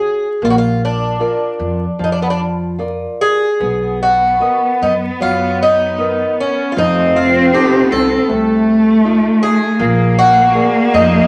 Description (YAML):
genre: fado-style ballad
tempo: 77 BPM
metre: 4/4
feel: uneven beats, rubato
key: unclear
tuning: A4 = 441 Hz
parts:
  - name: fingerpicked twelve-string acoustic guitar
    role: melody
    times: 0.0-11.3 s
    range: Cb4 to A4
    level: -17 LUFS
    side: equal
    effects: none
  - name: nylon-string guitar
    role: accompaniment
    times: 0.0-11.2 s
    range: C3 to D#5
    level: -23 LUFS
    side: equal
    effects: none
  - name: upright bass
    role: bass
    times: 0.4-11.2 s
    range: F1 to F#2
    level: -23 LUFS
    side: equal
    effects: none
  - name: warm cello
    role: second line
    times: 3.6-11.3 s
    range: A3 to C4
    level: -17 LUFS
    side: equal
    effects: none
room: wet studio reverb, RT60 0.6 s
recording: vinyl crackle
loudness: -14 LUFS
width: mono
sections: 0.0-11.3 A section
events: none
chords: 0.4 Bb; 3.6 Bmaj7; 6.8 F7; 9.8 Bb7